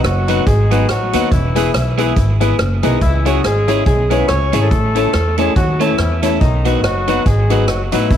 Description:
ska; 141 BPM; 4/4; swing 58% on 8ths; B mixolydian; A4 = 439 Hz
dark horn section; melody; 0.0-8.2 s; D#3 to C#5; -20 LUFS; equal
upright bass; bass; 0.0-8.2 s; E1 to E2; -16 LUFS; equal; tube saturation
swinging big-band drum kit; drums; 0.0-8.2 s; hi-hat, kick drum, rim click; -20 LUFS; equal
electric guitar at the edge of break-up; accompaniment; 0.3-8.1 s; F#3 to A4; -21 LUFS; right 10 dB; tape echo
warm upright piano; stabs; 0.3-8.1 s; D#4 to C#5; -20 LUFS; left 11 dB
light reverb, studio reverb; 1960s-style stereo with parts hard left and right; -12 LUFS; side -10 dB against mid
0.0-8.2 A section
0.0 B; 1.3 E; 3.0 C#m; 4.7 A; 6.4 B

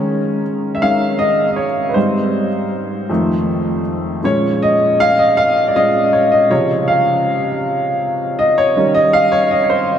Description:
gospel; 53 BPM (dotted quarters); 6/8; straight; A4 = 439 Hz
warm upright piano; solo; 0.0-10.0 s; F2 to F5; -13 LUFS; equal; wide subtle chorus, tape echo
wet cathedral reverb, RT60 6.9 s; dreamy mix soaked in reverb; -13 LUFS; side -9 dB against mid
0.0-10.0 A section
upright piano solo 0.0-10.0
0.0 Eb7sus4; 2.0 Abmaj7; 3.1 F7; 4.2 Bbm7; 6.5 Dbmaj7; 8.8 Eb7

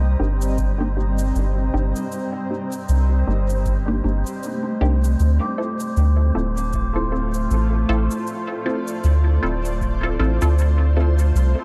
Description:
ambient dub; 78 BPM; 4/4; swing 58% on 16ths; A4 = 439 Hz
granular cloud pad; sustained chords; 0.0-11.6 s; G3 to Bb5; -31 LUFS; equal; built-in reverb
soft dub sub bass; bass; 0.0-11.5 s; D1 to D2; -20 LUFS; equal
wind-like tuned noise texture; texture; 0.0-11.6 s; C5; -37 LUFS; equal; built-in reverb
filtered dub chord stab; stabs; 0.2-11.2 s; Bb3 to A4; -30 LUFS; equal; phaser, dub echo
cabasa; drums; 0.4-11.5 s; -44 LUFS; equal; dub echo
electronic kick drum; drums; 0.6-10.0 s; -31 LUFS; equal
vibraphone with soft mallets; arpeggios; 4.5-11.4 s; A3 to D6; -32 LUFS; equal; tape echo
studio ambience; echo-heavy mix; -21 LUFS; mono
0.0-11.6 A section
0.0 Cm7; 5.2 Dm7

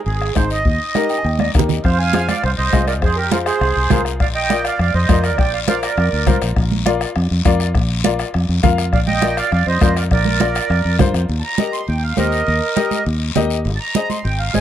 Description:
latin, cumbia; 203 BPM; 4/4; straight; Eb major; A4 = 441 Hz
accordion; melody; 0.1-6.4, 8.9-14.6 s; F4 to C6; -20 LUFS; right 4 dB; light tremolo tuning
fingered electric bass; bass; 0.1-14.6 s; Ab1 to G2; -19 LUFS; equal
guiro; percussion; 0.1-14.6 s; -30 LUFS; left 9 dB
bombo; percussion; 0.2-11.3 s; -19 LUFS; left 2 dB
warm upright piano; accompaniment; 0.4-14.6 s; Eb4 to Ab5; -23 LUFS; left 6 dB
congas; percussion; 0.4-14.6 s; -21 LUFS; right 6 dB
light reverb; -15 LUFS; side -11 dB against mid
0.0-1.8 A section; 1.8-11.3 B section; 11.3-14.6 C section
upright piano fill 1.0-1.8; drum fill 1.4-1.8; accordion solo 11.3-14.6
0.0 Ab; 0.7 Eb; 1.8 Fm; 4.2 Bb; 11.3 Eb; 13.7 Ab

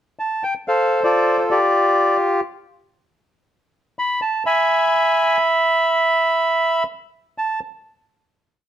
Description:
tango; free time; A4 = 441 Hz
bandoneon; solo; 0.2-7.6 s; F4 to B5; -16 LUFS; equal
moderate studio reverb, RT60 0.8 s; dark, warm production; -16 LUFS; side -10 dB against mid
0.0-7.4 A section; 7.4-8.7 final note
0.0 N.C.; 0.7 F; 1.6 G5; 2.6 N.C.; 4.4 E; 5.4 N.C.

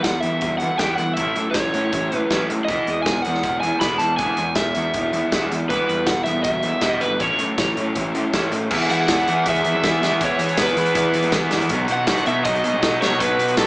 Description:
indie rock; 159 BPM; 4/4; straight; A4 = 440 Hz
crunchy overdriven guitar; melody; 0.0-13.7 s; A4 to B5; -22 LUFS; right 1 dB
distorted electric guitar; riff; 0.0-13.7 s; F#3 to A4; -24 LUFS; equal; distortion
overdriven semi-hollow guitar; riff; 0.0-13.7 s; A2 to A4; -27 LUFS; left 1 dB
fuzz picked electric bass; bass; 0.0-13.7 s; E1 to E3; -26 LUFS; equal; overdrive
loose indie drum kit; drums; 0.0-13.7 s; crash cymbal, hi-hat, kick drum, snare drum; -24 LUFS; equal
moderate large studio reverb, RT60 1.0 s; band playing live in one room, small speaker sound; -17 LUFS; side -26 dB against mid
0.0-8.7 A section; 8.7-13.7 B section
0.0 Emadd9; 1.2 A6; 2.7 Emaj7; 5.7 Emadd9; 7.2 A6; 8.7 E; 11.7 B7

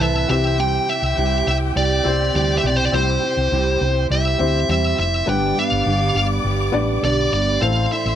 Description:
piano-driven pop; 102 BPM; 4/4; straight; C major; A4 = 440 Hz
smooth overdriven lead guitar; melody; 0.0-8.2 s; C5 to G5; -21 LUFS; equal
dark symphonic violin section; second line; 0.0-8.2 s; G4 to D6; -29 LUFS; equal
warm baby grand piano; accompaniment; 0.0-8.2 s; G2 to D5; -25 LUFS; left 5 dB
fingerpicked steel-string acoustic guitar; riff; 0.0-8.2 s; G2 to A4; -24 LUFS; right 7 dB
hollow-body short-scale fingered electric bass; bass; 0.0-8.2 s; F1 to E2; -21 LUFS; equal
light reverb, small room ambience; -16 LUFS; side -10 dB against mid
0.0-8.2 A section
0.3 C; 5.3 G; 7.6 Am

